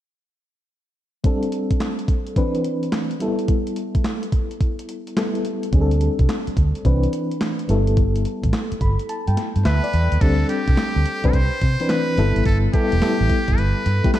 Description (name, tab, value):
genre	R&B, new jack swing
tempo	107 BPM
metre	4/4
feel	swing 66% on 16ths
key	G major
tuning	A4 = 440 Hz
part	FM electric piano with tremolo	accompaniment	1.2-14.2 s	E3 to B5	-23 LUFS	left 2 dB	none
part	clean 12-bit digital drum machine	drums	1.2-14.2 s	crash cymbal, handclaps, hi-hat, kick drum, snare drum	-21 LUFS	equal	none
part	vintage muted fingered electric bass	bass	5.7-14.0 s	E1 to C3	-19 LUFS	equal	none
part	trumpet with metal mute	melody	9.7-14.2 s	G4 to C5	-25 LUFS	equal	diffuse ambient delay
room	moderate lush hall reverb, RT60 1.7 s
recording	dreamy mix soaked in reverb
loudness	-18 LUFS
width	side -13 dB against mid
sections	1.2-10.2 A section; 10.2-14.2 B section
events	FM electric piano fill 8.5-10.2; kick muted 9.1-10.2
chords	1.2 D7sus4; 2.4 Cmaj9; 3.2 G69; 5.7 D7sus4; 6.8 Cmaj9; 7.7 G69; 10.2 D7sus4; 11.3 Cmaj9; 12.2 G69